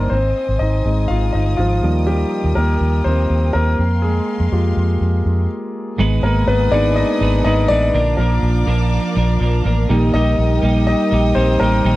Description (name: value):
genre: pop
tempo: 123 BPM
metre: 4/4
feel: straight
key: Eb major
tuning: A4 = 444 Hz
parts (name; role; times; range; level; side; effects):
- warm concert grand piano; accompaniment; 0.0-12.0 s; F3 to F5; -19 LUFS; left 1 dB; none
- clear studio string section; sustained chords; 0.0-12.0 s; Ab3 to Eb6; -30 LUFS; right 1 dB; none
- vintage muted fingered electric bass; bass; 0.0-12.0 s; G1 to F2; -17 LUFS; equal; none
- twelve-string electric guitar; riff; 6.0-12.0 s; Ab2 to Cb5; -20 LUFS; right 2 dB; none
room: little or no reverb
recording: dry, close 1970s-style studio recording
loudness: -14 LUFS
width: side -17 dB against mid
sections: 0.0-6.0 A section; 6.0-12.0 B section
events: grand piano solo 0.0-6.0, 6.0-12.0; stop 5.5-6.0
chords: 0.1 Ab; 1.8 Eb; 3.8 Fmadd9; 6.0 Abm; 7.9 Bb; 9.9 Eb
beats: | 0.12 0.61 1.10 1.59 | 2.08 2.57 3.06 3.54 | 4.04 4.52 5.01 5.50 | 5.99 6.48 6.97 7.46 | 7.94 8.43 8.92 9.41 | 9.90 10.38 10.87 11.36 | 11.85